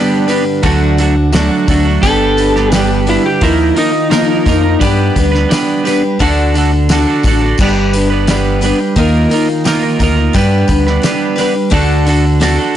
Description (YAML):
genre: folk rock and heartland rock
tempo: 87 BPM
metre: 4/4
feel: straight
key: G major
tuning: A4 = 440 Hz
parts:
  - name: picked steel-string acoustic guitar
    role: accompaniment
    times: 0.0-12.8 s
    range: D3 to B4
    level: -16 LUFS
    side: left 5 dB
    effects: none
  - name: twelve-string electric guitar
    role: riff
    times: 0.0-12.8 s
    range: G2 to B4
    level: -14 LUFS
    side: right 6 dB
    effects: none
  - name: cloth-damped thuddy drum kit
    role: drums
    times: 0.3-12.6 s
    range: crash cymbal, hi-hat, kick drum, snare drum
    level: -18 LUFS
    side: left 1 dB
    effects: none
  - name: tambourine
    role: percussion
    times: 0.3-12.6 s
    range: none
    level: -33 LUFS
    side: left 8 dB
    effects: none
  - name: fingered electric bass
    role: bass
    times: 0.6-12.6 s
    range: G1 to G2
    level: -14 LUFS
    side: left 1 dB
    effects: none
  - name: electric slide guitar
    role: second line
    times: 2.0-4.8 s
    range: Eb4 to A4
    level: -14 LUFS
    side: left 1 dB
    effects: none
room: light reverb, small room ambience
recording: blown-out, overdriven recording, overdrive, nothing above 10.9 kHz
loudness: -10 LUFS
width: side -11 dB against mid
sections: 0.0-12.8 A section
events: none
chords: 0.0 G; 0.6 D; 2.0 G; 3.4 Ebsus2; 4.8 G; 6.2 D; 7.6 G; 9.0 Ebsus2; 10.4 G; 11.7 D